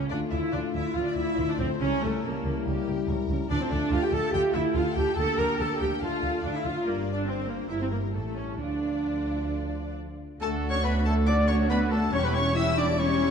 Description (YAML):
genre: quick classical-period movement for symphony orchestra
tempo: 141 BPM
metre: 4/4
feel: rubato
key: D minor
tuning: A4 = 440 Hz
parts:
  - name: rich chamber violin section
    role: melody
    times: 0.0-13.3 s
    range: F4 to E6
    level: -37 LUFS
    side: left 3 dB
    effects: none
  - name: rich studio viola section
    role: accompaniment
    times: 0.0-13.3 s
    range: G3 to Bb4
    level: -29 LUFS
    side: right 2 dB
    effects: none
  - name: mellow French horn section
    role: sustained chords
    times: 0.0-13.3 s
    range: F3 to F4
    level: -32 LUFS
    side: left 5 dB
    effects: none
  - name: dark chamber cello section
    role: bass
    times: 0.0-13.3 s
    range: D2 to D3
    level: -34 LUFS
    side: right 2 dB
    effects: none
  - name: dark chamber double bass section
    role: bass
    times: 0.0-13.3 s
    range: E1 to D2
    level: -31 LUFS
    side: right 2 dB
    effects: none
  - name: rich chamber violin section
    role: second line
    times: 0.1-13.3 s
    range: E4 to Bb5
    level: -37 LUFS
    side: left 3 dB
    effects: none
  - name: clear clarinet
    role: second line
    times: 10.4-13.3 s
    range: A4 to E5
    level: -35 LUFS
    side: left 2 dB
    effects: none
  - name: clear oboe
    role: second line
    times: 10.4-13.3 s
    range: A4 to E5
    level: -34 LUFS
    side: equal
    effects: none
  - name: mellow hollow large flute ensemble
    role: second line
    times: 10.4-13.3 s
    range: A4 to E5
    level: -34 LUFS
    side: left 3 dB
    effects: none
  - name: clear trumpet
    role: stabs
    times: 10.4-13.3 s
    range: A4 to E5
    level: -34 LUFS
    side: right 1 dB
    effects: none
room: moderate scoring stage reverb, RT60 2.0 s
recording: dark, warm production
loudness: -24 LUFS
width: side -6 dB against mid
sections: 0.0-10.4 A section; 10.4-13.3 A section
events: none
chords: 0.1 Dm; 1.8 C#dim7; 3.5 Dm; 5.2 Gm/D; 6.0 Dm; 6.9 G5; 7.7 Edim/G; 8.1 A7; 8.6 Dm; 10.4 D; 12.1 C#dim/E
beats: | 0.11 0.53 0.95 1.38 | 1.81 2.24 2.66 3.08 | 3.50 3.92 4.33 4.75 | 5.17 5.60 6.02 6.44 | 6.86 7.28 7.70 8.14 | 8.60 9.06 9.52 9.97 | 10.42 10.85 11.27 11.71 | 12.14 12.56 12.99